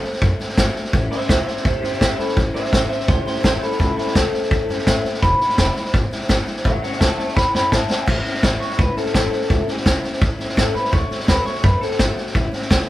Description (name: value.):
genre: rockabilly.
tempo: 168 BPM.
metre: 4/4.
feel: straight.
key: A major.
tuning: A4 = 440 Hz.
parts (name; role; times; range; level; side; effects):
picked steel-string acoustic guitar; accompaniment; 0.0-12.9 s; E2 to F#4; -28 LUFS; left 3 dB; none.
upright bass; bass; 0.0-12.8 s; E1 to A2; -23 LUFS; equal; none.
vintage drum kit; drums; 0.0-12.8 s; crash cymbal, hi-hat, kick drum, snare drum; -18 LUFS; equal; none.
electric guitar through a small old amp; melody; 1.1-12.3 s; E4 to B5; -23 LUFS; left 1 dB; none.
room: light reverb.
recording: band playing live in one room.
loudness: -16 LUFS.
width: side -15 dB against mid.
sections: 0.0-8.1 A section; 8.1-12.9 B section.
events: drum fill 7.4-8.1; clean electric guitar solo 8.1-12.9.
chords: 0.0 D; 0.9 A; 5.2 E7; 6.7 A; 10.9 D; 12.4 A.